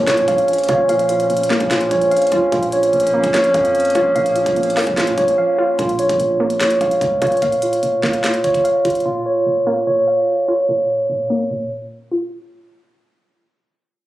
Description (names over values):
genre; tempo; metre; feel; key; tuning
hip hop, trap; 147 BPM; 4/4; half-time; Bb minor; A4 = 439 Hz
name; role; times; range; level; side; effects
warbly dusty pluck; accompaniment; 0.0-12.3 s; Bb2 to F4; -25 LUFS; left 1 dB; chorus, low-pass filter
warbly tape-like pad; sustained chords; 0.0-5.8 s; F3 to Db4; -29 LUFS; left 1 dB; chorus, built-in reverb
mellow tine electric piano; arpeggios; 0.0-11.7 s; F4 to F5; -15 LUFS; right 1 dB; slow stereo tremolo, low-pass filter, slapback echo
hard-hitting 808-style bass; bass; 0.0-7.4 s; Bb1 to Bb2; -27 LUFS; equal; none
trap drum kit; drums; 0.1-9.1 s; handclaps, hi-hat, kick drum, snare drum; -25 LUFS; equal; none
room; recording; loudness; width
light reverb, digital ambience; recorded on a phone in the room, club reverb; -14 LUFS; side -15 dB against mid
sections
0.0-5.8 A section; 5.8-12.3 B section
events
silent gap 5.4-5.8; filter sweep 5.8-12.3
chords
0.0 Bbm